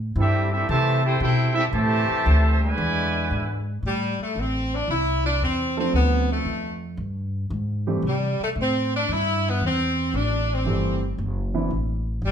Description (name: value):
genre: jazz, big band swing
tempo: 114 BPM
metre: 4/4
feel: swing 68% on 8ths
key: A minor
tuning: A4 = 440 Hz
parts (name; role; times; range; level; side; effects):
- upright bass; bass; 0.0-12.3 s; F#1 to C3; -24 LUFS; equal; none
- clear trumpet section; melody; 0.2-3.6 s; C4 to A5; -24 LUFS; right 1 dB; none
- clear trombone section; second line; 0.2-3.6 s; B2 to G4; -28 LUFS; right 3 dB; none
- warm saxophone section; melody; 3.9-12.3 s; G3 to E4; -24 LUFS; equal; none
- warm grand piano; accompaniment; 5.8-11.7 s; E3 to A4; -27 LUFS; right 3 dB; none
room: moderate large studio reverb, RT60 1.1 s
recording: band playing live in one room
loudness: -21 LUFS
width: side -8 dB against mid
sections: 0.0-3.8 A section; 3.8-12.3 B section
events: none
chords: 0.0 Am7; 2.8 E7; 3.8 Am; 5.9 Dm7; 7.0 G#maj7#5/G; 8.0 C6; 10.1 Am7; 11.2 D13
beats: 0.17 0.69 1.22 | 1.74 2.27 2.79 3.31 | 3.84 4.36 4.89 5.41 | 5.94 6.46 6.99 7.51 | 8.04 8.56 9.09 9.61 | 10.14 10.66 11.19 11.71 | 12.23